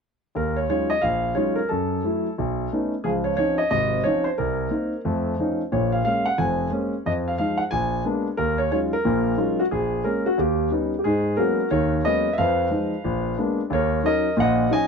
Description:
jazz; 180 BPM; 4/4; swing 62% on 8ths; Eb minor, G# minor from 11.0 s; A4 = 438 Hz
warm concert grand piano; solo; 0.3-14.9 s; F1 to Ab5; -20 LUFS; equal
light reverb; close, detailed microphones; -20 LUFS; side -5 dB against mid
0.4-11.0 A section; 11.0-14.9 B section
0.4 Ebm11; 1.7 Gbm7; 2.4 B9; 3.0 Dbmaj9; 4.4 Cm7; 5.0 F7b13; 5.7 Bbm7; 7.0 Fm7; 7.7 Bb7b9; 8.4 Ebm11; 9.7 Bbm7; 10.4 Eb7b13; 11.0 G#m11; 12.4 Fm7b5; 13.0 A#7b9; 13.7 D#m7

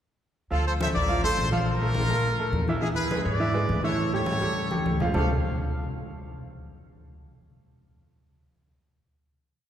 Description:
latin, salsa; 207 BPM; 4/4; straight; D minor; A4 = 440 Hz
brilliant horn section; melody; 0.5-5.3 s; E4 to F5; -29 LUFS; equal
bright upright piano; accompaniment; 0.5-5.3 s; D3 to F5; -29 LUFS; right 2 dB
upright bass; bass; 0.5-5.3 s; A1 to Bb2; -29 LUFS; equal
congas; percussion; 0.5-5.2 s; -31 LUFS; left 1 dB
wet church reverb, RT60 3.2 s; recorded in a church or concert hall; -23 LUFS; side -10 dB against mid
0.5-5.2 verse; 5.2-6.3 final chord
drum fill 4.7-5.2
0.5 Dm7; 1.7 Bb5; 2.8 E7; 4.0 A7; 5.2 Dm7

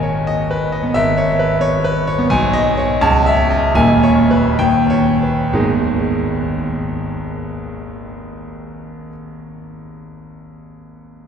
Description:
classical, virtuoso piano study; 61-89 BPM (dotted quarters); 6/8; rubato; G# minor; A4 = 438 Hz
bright concert grand piano; solo; 0.0-11.3 s; D#1 to A5; -15 LUFS; equal
wet cathedral reverb, RT60 5.5 s; heard from further back in the room; -13 LUFS; side -7 dB against mid
0.0-5.5 A section; 5.5-9.2 B section
slowing down 1.6-5.5
0.0 G#m; 0.9 C#m7/G#; 2.3 G#m/B; 3.0 A/C#; 3.8 D#7sus4; 4.6 D#7; 5.5 G#m

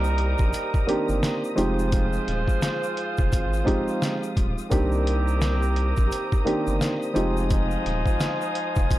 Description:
hip hop, boom-bap hip-hop; 86 BPM; 4/4; swing 60% on 16ths; A4 = 440 Hz
dark concert grand piano; accompaniment; 0.0-9.0 s; Eb3 to G4; -27 LUFS; right 1 dB; high-pass filter, low-pass filter
dark studio string section; sustained chords; 0.0-9.0 s; F4 to Eb6; -34 LUFS; left 1 dB; high-pass filter, low-pass filter
warm horn section; stabs; 0.0-9.0 s; Eb3 to C5; -30 LUFS; right 1 dB; high-pass filter, low-pass filter, analog delay
saturated sub bass; bass; 0.0-9.0 s; Eb1 to C2; -25 LUFS; equal; transformer saturation
tube shaker; percussion; 0.0-9.0 s; -46 LUFS; left 4 dB
trip hop sampler-style drum kit; drums; 0.2-9.0 s; hi-hat, kick drum, snare drum; -24 LUFS; equal
little or no reverb; dry, gritty hardware recording; -21 LUFS; side -15 dB against mid
0.0-9.0 A section
0.0 Cm7; 1.6 Fm7; 4.7 Cm7; 7.2 Fm7

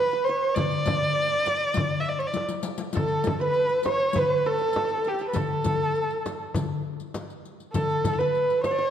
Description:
Arabic maqam ensemble; 100 BPM; 4/4; straight; D maqam rast; A4 = 443 Hz
dark violin; melody; 0.0-8.9 s; G4 to E5; -24 LUFS; right 1 dB
qanun; second line; 0.0-8.9 s; A4 to D5; -31 LUFS; right 5 dB
riq; percussion; 0.1-8.8 s; -36 LUFS; left 5 dB
darbuka; percussion; 0.4-8.4 s; -32 LUFS; left 3 dB
frame drum; percussion; 0.6-8.8 s; -32 LUFS; left 2 dB
moderate concert hall reverb, RT60 2.1 s; -23 LUFS; side -9 dB against mid
0.0-3.0 A section; 3.0-8.9 B section
drum fill 2.4-3.0

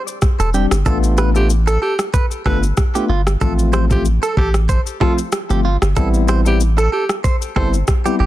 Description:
afrobeats; 94 BPM; 4/4; swing 55% on 16ths; A4 = 439 Hz
afro-pop drum kit; drums; 0.1-8.2 s; kick drum, rim click, shaker; -18 LUFS; equal; vintage 12-bit sampler grit
direct-recorded clean electric guitar; riff; 0.4-8.3 s; F4 to C5; -24 LUFS; right 6 dB; ping-pong delay
punchy sub bass; bass; 0.4-8.3 s; E1 to A1; -16 LUFS; equal
tine electric piano; accompaniment; 0.5-8.2 s; F3 to G4; -21 LUFS; left 3 dB; medium stereo tremolo
breathy alto saxophone; melody; 1.4-7.7 s; F4 to C5; -24 LUFS; right 1 dB; ping-pong delay
little or no reverb; dense, heavily limited modern master; -14 LUFS; side -14 dB against mid
0.9-8.3 A section
0.0 Gsus4; 0.9 G7/A; 3.4 F/A; 6.0 Am7

